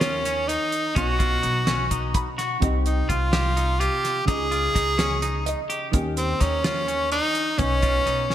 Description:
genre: progressive instrumental, band music in an uneven meter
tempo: 253 BPM (eighths)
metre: 7/8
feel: straight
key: unclear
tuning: A4 = 439 Hz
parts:
  - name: edgy tenor saxophone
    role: melody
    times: 0.0-8.3 s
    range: C4 to Ab4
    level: -24 LUFS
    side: equal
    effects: none
  - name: hollow-body jazz guitar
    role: accompaniment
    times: 0.0-8.3 s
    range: Cb3 to Cb6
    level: -30 LUFS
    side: equal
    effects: double-tracked left and right
  - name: twangy electric guitar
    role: arpeggios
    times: 0.0-8.3 s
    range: Db4 to G4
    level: -30 LUFS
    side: left 2 dB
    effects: none
  - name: upright bass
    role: bass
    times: 0.0-8.3 s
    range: Cb2 to Eb2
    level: -27 LUFS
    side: equal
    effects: none
  - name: damped 70s drum kit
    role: drums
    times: 0.0-8.3 s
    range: hi-hat, kick drum, snare drum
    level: -26 LUFS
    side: equal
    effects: gated reverb
room: moderate lush hall reverb, RT60 1.9 s, small room ambience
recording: bright 1980s-style digital production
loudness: -20 LUFS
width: side -11 dB against mid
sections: 0.0-8.3 A section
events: hollow-body jazz guitar fill 1.9-2.6, 5.2-5.9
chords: 0.0 Eb7; 1.0 Cbadd9; 2.6 Cm; 4.3 Dbsus2; 5.9 Eb7; 7.6 Cbadd9

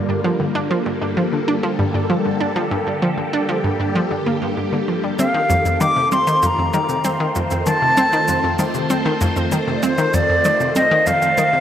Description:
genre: ambient, sequencer-driven space music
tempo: 97 BPM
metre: 4/4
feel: straight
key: unclear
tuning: A4 = 440 Hz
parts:
  - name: phased string machine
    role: sustained chords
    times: 0.0-11.6 s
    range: D3 to C5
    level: -22 LUFS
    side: equal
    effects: ensemble chorus, phaser
  - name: analog pluck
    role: riff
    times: 0.1-11.6 s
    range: F2 to D4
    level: -20 LUFS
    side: equal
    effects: chorus, tape echo
  - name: wooden flute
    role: melody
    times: 5.2-11.6 s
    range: C5 to D6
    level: -17 LUFS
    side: equal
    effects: tape echo
  - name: congas and cabasa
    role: percussion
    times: 5.2-11.5 s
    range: none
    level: -28 LUFS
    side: left 1 dB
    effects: tape echo
room: wet lush hall reverb, RT60 2.8 s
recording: cassette tape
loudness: -16 LUFS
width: side -10 dB against mid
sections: 0.0-11.6 A section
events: none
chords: 0.0 Gm7; 5.2 F7

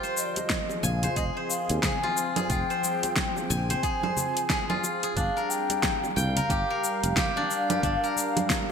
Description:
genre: organic downtempo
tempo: 90 BPM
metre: 4/4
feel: swing 60% on 16ths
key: F dorian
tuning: A4 = 440 Hz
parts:
  - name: breathy mellow ney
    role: melody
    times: 0.0-8.7 s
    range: C5 to Ab5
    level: -30 LUFS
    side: left 1 dB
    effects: ping-pong delay
  - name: warm analog pad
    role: sustained chords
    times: 0.0-8.7 s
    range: D3 to F5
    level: -35 LUFS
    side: left 1 dB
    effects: chorus, sidechain pumping
  - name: steel-string zither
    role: arpeggios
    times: 0.0-8.7 s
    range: D4 to Ab5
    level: -30 LUFS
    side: equal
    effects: digital delay
  - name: deep house drum kit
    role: drums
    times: 0.0-8.7 s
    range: cabasa, congas, hi-hat, snare drum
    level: -29 LUFS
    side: equal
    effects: gated reverb
  - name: congas and bongos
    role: percussion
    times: 0.4-8.7 s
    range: none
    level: -38 LUFS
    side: equal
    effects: none
  - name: electronic kick drum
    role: drums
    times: 0.5-8.7 s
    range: none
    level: -32 LUFS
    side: equal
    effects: none
  - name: sustaining fretless electric bass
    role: bass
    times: 0.8-8.0 s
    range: F1 to Eb2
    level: -29 LUFS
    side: equal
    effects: sidechain pumping
room: moderate plate reverb, RT60 2.8 s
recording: bright 1980s-style digital production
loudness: -24 LUFS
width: side -6 dB against mid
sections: 0.0-8.7 A section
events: none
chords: 0.0 Fmadd9; 5.2 Gm7

